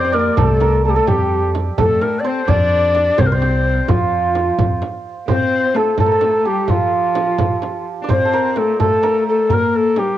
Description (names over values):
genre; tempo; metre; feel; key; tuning
Persian modal ensemble; 86 BPM (dotted quarters); 6/8; straight; F dastgah mahur; A4 = 440 Hz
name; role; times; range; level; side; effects
breathy bright ney; melody; 0.0-10.2 s; F4 to D5; -17 LUFS; left 2 dB; cassette tape
rich cello; second line; 0.0-10.2 s; F3 to D4; -24 LUFS; left 6 dB; cassette tape
santur; second line; 0.0-10.2 s; F4 to D5; -21 LUFS; right 8 dB; cassette tape
upright bass; bass; 0.0-4.8 s; C2 to F2; -19 LUFS; equal; none
frame drum; percussion; 0.1-10.1 s; none; -24 LUFS; right 6 dB; none
tombak; percussion; 0.1-10.1 s; none; -22 LUFS; left 2 dB; none
room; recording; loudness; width
little or no reverb; home recording on cassette; -14 LUFS; side -12 dB against mid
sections
0.0-5.3 A section; 5.3-10.2 B section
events
none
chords
none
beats
0.38 | 1.08 1.78 | 2.48 3.19 | 3.89 4.59 | 5.29 5.99 | 6.69 7.39 | 8.09 8.80 | 9.50